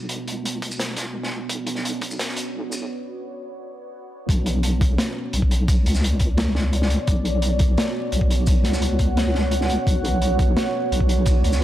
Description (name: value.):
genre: half-time drum and bass.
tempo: 172 BPM.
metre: 4/4.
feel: half-time.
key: B minor.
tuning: A4 = 440 Hz.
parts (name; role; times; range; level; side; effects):
deep dark ambient pad; sustained chords; 0.0-11.6 s; B3 to F#5; -27 LUFS; right 2 dB; chorus, built-in reverb, sidechain pumping.
deep soft wobble bass; bass; 0.0-11.6 s; B1 to C#2; -22 LUFS; equal; chorus, high-pass filter.
crunchy breakbeat drum kit; drums; 0.1-11.6 s; hi-hat, shaker, snare drum; -27 LUFS; equal; high-pass filter on hats, high-pass filter on snare, high-pass filter on perc, high-pass filter on room.
electronic kick drum; drums; 0.6-2.1, 4.3-11.3 s; none; -21 LUFS; equal; high-pass filter on kick.
room: light reverb, small room ambience.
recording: high-pass filter.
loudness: -19 LUFS.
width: side -13 dB against mid.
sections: 0.0-4.3 A section; 4.3-11.6 B section.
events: build-up 0.0-4.3; filter sweep 0.0-4.3; break 2.9-4.3; drop 4.3-11.6.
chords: 0.0 Bmadd9.